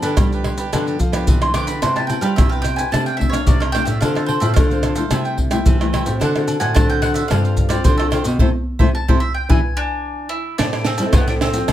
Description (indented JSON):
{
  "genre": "samba and choro",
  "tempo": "110 BPM",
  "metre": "4/4",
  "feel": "straight",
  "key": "C major",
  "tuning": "A4 = 440 Hz",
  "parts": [
    { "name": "cavaquinho", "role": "accompaniment", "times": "0.0-9.6 s", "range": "D4 to G5", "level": "-28 LUFS", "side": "right 4 dB", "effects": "none" },
    { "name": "nylon-string guitar", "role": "accompaniment", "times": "0.0-11.7 s", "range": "G2 to A4", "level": "-25 LUFS", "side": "left 3 dB", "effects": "none" },
    { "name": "nylon-string guitar", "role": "bass", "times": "0.0-11.7 s", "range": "G2 to A3", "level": "-22 LUFS", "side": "equal", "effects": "none" },
    { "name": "agogo bells, maracas, pandeiro, surdo, tamborim and caixa", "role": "percussion", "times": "0.0-11.7 s", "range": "none", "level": "-18 LUFS", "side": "equal", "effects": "none" },
    { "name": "bowl-back mandolin", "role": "melody", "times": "1.4-11.7 s", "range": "B3 to D6", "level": "-23 LUFS", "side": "equal", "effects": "plate reverb" }
  ],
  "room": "light reverb",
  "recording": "none",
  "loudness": "-15 LUFS",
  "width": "side -12 dB against mid",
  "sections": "0.0-10.6 A section; 10.6-11.7 B section",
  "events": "mandolin solo 0.0-10.6; band accent 8.4-10.6; drum fill 9.8-10.6",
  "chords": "0.0 G7; 1.8 Cmaj7; 2.9 F69/C; 4.0 Dm7; 5.1 Am7/C; 6.2 D7; 7.3 G9sus4; 8.4 C6; 9.5 E7; 10.6 Am"
}